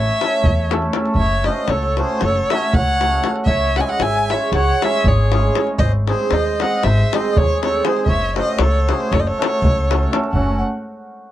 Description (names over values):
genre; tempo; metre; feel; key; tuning
balkan folk, Balkan wedding band; 234 BPM (eighths); 9/8; straight; F# dorian sharp4; A4 = 438 Hz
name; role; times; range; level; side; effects
dark violin; melody; 0.0-10.6 s; B#4 to G#5; -21 LUFS; equal; none
accordion; second line; 0.0-10.6 s; C#4 to E5; -25 LUFS; right 1 dB; none
upright bass; bass; 0.0-10.6 s; F#1 to E2; -19 LUFS; equal; none
cimbalom; accompaniment; 0.2-10.6 s; G#3 to A4; -23 LUFS; right 3 dB; none
davul; percussion; 0.2-10.6 s; none; -21 LUFS; left 2 dB; none
room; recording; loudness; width
light reverb; dry, close 1970s-style studio recording; -15 LUFS; side -13 dB against mid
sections
0.0-10.4 A section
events
none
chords
0.0 A; 1.2 F#m; 3.5 C#m; 5.8 G#; 8.1 F#m